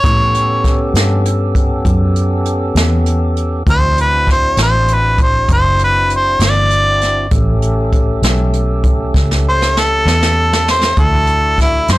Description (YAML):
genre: slow blues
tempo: 66 BPM (dotted quarters)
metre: 12/8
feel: straight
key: A mixolydian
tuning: A4 = 441 Hz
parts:
  - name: bright harmonica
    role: melody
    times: 0.0-12.0 s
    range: E4 to D5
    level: -14 LUFS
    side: equal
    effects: overdrive
  - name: tonewheel organ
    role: sustained chords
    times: 0.0-12.0 s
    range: A3 to A4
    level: -21 LUFS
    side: equal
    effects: slow rotary speaker
  - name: vintage muted fingered electric bass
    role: bass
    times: 0.0-12.0 s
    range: F#1 to A2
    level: -15 LUFS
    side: equal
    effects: transformer saturation
  - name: jazz brush drum kit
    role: drums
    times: 0.0-12.0 s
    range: hi-hat, kick drum, snare drum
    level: -16 LUFS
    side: equal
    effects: soft clipping on snare
room: little or no reverb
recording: blown-out, overdriven recording, overdrive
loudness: -11 LUFS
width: side -17 dB against mid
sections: 0.0-12.0 A section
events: harmonica solo 0.0-12.0; drum fill 9.1-11.0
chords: 0.0 A9; 3.7 D9; 7.3 A9; 11.0 Dadd9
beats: | 0.04 0.94 1.85 2.76 | 3.67 4.58 5.49 6.40 | 7.31 8.23 9.14 10.05 | 10.97 11.88